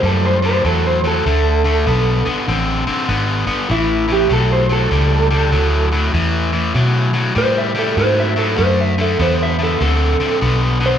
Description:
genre	electric blues shuffle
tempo	98 BPM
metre	4/4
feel	swing 64% on 8ths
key	unclear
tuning	A4 = 440 Hz
part	electric guitar through a small old amp	melody	0.0-11.0 s	E4 to E5	-18 LUFS	right 2 dB	spring reverb, slapback echo
part	crunchy overdriven guitar	riff	0.0-11.0 s	A2 to C4	-19 LUFS	left 3 dB	slapback echo
part	vintage muted fingered electric bass	bass	0.0-11.0 s	G#1 to B2	-17 LUFS	equal	none
room	digital ambience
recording	live gig heard through the venue's PA, club reverb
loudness	-14 LUFS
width	side -9 dB against mid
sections	0.0-11.0 A section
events	clean electric guitar solo 0.0-11.0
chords	0.0 A5; 1.3 D5; 3.7 A; 8.6 D

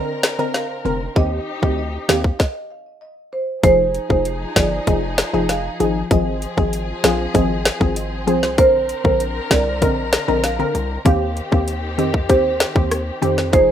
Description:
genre	dancehall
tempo	97 BPM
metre	4/4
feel	straight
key	unclear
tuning	A4 = 440 Hz
part	marimba with medium mallets	melody	0.0-13.7 s	C5 to F5	-21 LUFS	right 2 dB	digital delay
part	glassy wavetable pluck	accompaniment	0.0-13.7 s	D3 to Bb4	-21 LUFS	left 1 dB	chorus
part	dark studio string section	sustained chords	0.0-13.7 s	D3 to Bb4	-29 LUFS	left 2 dB	sidechain pumping
part	island pop drum kit	drums	0.2-13.7 s	hi-hat, kick drum, rim click, snare drum	-18 LUFS	equal	overdrive
part	hard-hitting 808-style bass	bass	0.9-13.7 s	F1 to F2	-24 LUFS	equal	none
room	moderate studio reverb, RT60 0.6 s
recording	rough home demo mix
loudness	-16 LUFS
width	side -9 dB against mid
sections	0.0-3.6 A section; 3.6-13.7 B section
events	stop 2.4-3.6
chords	0.0 Bbadd9; 1.2 Eb6; 3.6 Fm7; 6.1 Ab6; 8.6 Bbadd9; 11.1 Eb6

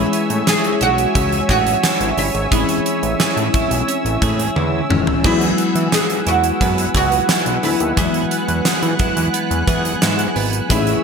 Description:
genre	1980s-style pop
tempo	88 BPM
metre	4/4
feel	straight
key	E major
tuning	A4 = 440 Hz
part	oud	melody	0.0-11.0 s	E4 to G#4	-21 LUFS	right 2 dB	none
part	FM electric piano with soft pad layer	accompaniment	0.0-11.0 s	E3 to G#4	-23 LUFS	left 4 dB	chorus
part	warm analog pad	sustained chords	0.0-11.0 s	B4 to F#6	-23 LUFS	right 1 dB	chorus
part	twelve-string electric guitar	riff	0.0-11.0 s	E3 to G#4	-24 LUFS	right 5 dB	wide subtle chorus, ping-pong delay
part	fat analog bass	bass	0.0-11.0 s	D#1 to E3	-22 LUFS	equal	none
part	gated 80s drum kit	drums	0.1-11.0 s	crash cymbal, hi-hat, kick drum, snare drum, tambourine, toms	-20 LUFS	right 1 dB	gated reverb
room	moderate plate reverb, RT60 3.2 s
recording	bright 1980s-style digital production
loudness	-15 LUFS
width	side -5 dB against mid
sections	0.0-11.0 A section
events	drum fill 4.6-5.2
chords	0.0 Amaj7; 5.2 Eadd9

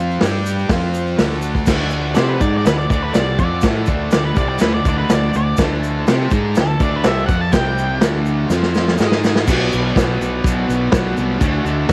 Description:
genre	garage rock duo or trio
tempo	123 BPM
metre	4/4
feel	straight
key	D mixolydian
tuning	A4 = 440 Hz
part	combo organ	sustained chords	0.0-11.9 s	D#4 to A5	-32 LUFS	equal	none
part	thick fuzz guitar	riff	0.0-11.9 s	B2 to C5	-24 LUFS	equal	distortion
part	fretless electric bass	bass	0.0-11.9 s	B1 to C3	-24 LUFS	equal	none
part	egg shaker	percussion	0.1-11.9 s	none	-39 LUFS	equal	none
part	vintage drum kit	drums	0.2-11.9 s	crash cymbal, hi-hat, kick drum, snare drum	-20 LUFS	equal	vintage 12-bit sampler grit
part	octave-fuzz lead guitar	melody	2.2-8.0 s	A4 to A5	-25 LUFS	equal	distortion, cassette tape
room	light reverb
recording	home recording on cassette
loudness	-17 LUFS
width	mono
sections	0.0-1.7 A section; 1.7-9.5 B section; 9.5-11.9 C section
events	drum fill 8.5-9.5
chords	0.2 G5; 0.7 F5; 1.2 D; 7.5 C5; 8.0 D; 8.5 F5; 9.0 G#5; 9.5 Bm; 11.4 D

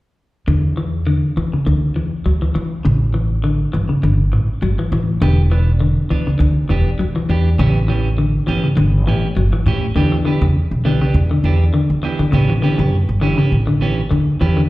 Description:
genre	afrobeat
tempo	101 BPM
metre	4/4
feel	swing 55% on 16ths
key	unclear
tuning	A4 = 442 Hz
part	semi-hollow electric guitar	arpeggios	0.5-14.7 s	C#3 to F#3	-18 LUFS	left 2 dB	none
part	upright bass	bass	0.5-14.7 s	E1 to E3	-17 LUFS	equal	none
part	clean electric guitar	stabs	5.2-14.6 s	E3 to G4	-23 LUFS	right 4 dB	plate reverb
room	moderate club ambience, RT60 0.5 s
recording	live gig heard through the venue's PA, recital hall reverb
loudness	-14 LUFS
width	side -18 dB against mid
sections	0.5-10.0 A section; 10.0-14.7 B section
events	none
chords	0.5 Dsus2; 2.9 A7; 5.2 Em7; 7.6 A9; 10.0 Em7; 12.3 A9

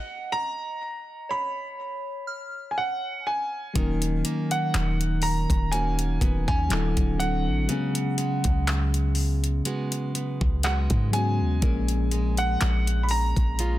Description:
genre	contemporary R&B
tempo	61 BPM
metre	4/4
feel	swing 54% on 16ths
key	Eb minor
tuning	A4 = 440 Hz
part	warm grand piano	melody	0.0-13.8 s	Gb5 to Cb6	-30 LUFS	right 1 dB	digital delay
part	soft synth bell	texture	0.0-4.2, 11.6-13.6 s	Bb4 to F6	-40 LUFS	left 2 dB	chorus, phaser, digital delay
part	mellow FM electric piano	accompaniment	3.7-13.8 s	F3 to Bb4	-31 LUFS	left 4 dB	chorus
part	nylon-string guitar	arpeggios	3.8-13.8 s	Bb2 to Gb4	-30 LUFS	right 2 dB	none
part	warm 808-style bass	bass	3.8-13.8 s	D1 to Ab2	-25 LUFS	equal	none
part	smooth R&B drum kit	drums	3.8-13.8 s	handclaps, hi-hat, kick drum	-27 LUFS	equal	none
room	digital ambience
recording	dense, heavily limited modern master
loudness	-23 LUFS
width	side -15 dB against mid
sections	0.0-3.8 A section; 3.8-13.8 B section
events	stop 0.0-3.8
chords	0.0 Db13; 3.8 Ebm7; 6.7 D9; 7.7 Db7sus4; 11.6 Bbm7

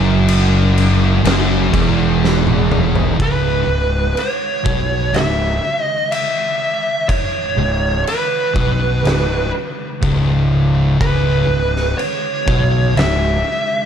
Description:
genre	stoner and doom metal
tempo	62 BPM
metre	4/4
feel	straight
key	C# minor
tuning	A4 = 441 Hz
part	swarming drone	sustained chords	0.4-13.9 s	C#3 to D#4	-30 LUFS	equal	none
part	fuzz guitar	riff	0.0-3.2 s	E2 to F#2	-20 LUFS	equal	distortion
part	thick fuzz guitar	riff	0.0-13.3 s	C#2 to B2	-20 LUFS	left 5 dB	distortion
part	thick fuzz guitar	riff	0.0-13.3 s	C#2 to B2	-20 LUFS	right 6 dB	distortion
part	fuzz fingered electric bass	bass	0.0-13.4 s	C#1 to B1	-19 LUFS	equal	overdrive, tube saturation
part	oversized low-tuned drum kit	drums	0.3-13.2 s	crash cymbal, kick drum, snare drum, toms	-22 LUFS	left 1 dB	none
part	fuzz lead guitar	melody	3.2-13.9 s	B4 to E5	-19 LUFS	right 1 dB	distortion, tape echo
room	light reverb, small room ambience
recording	none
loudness	-14 LUFS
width	side -8 dB against mid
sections	0.0-3.2 A section; 3.2-13.9 B section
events	drum fill 2.2-3.2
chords	0.0 C#m

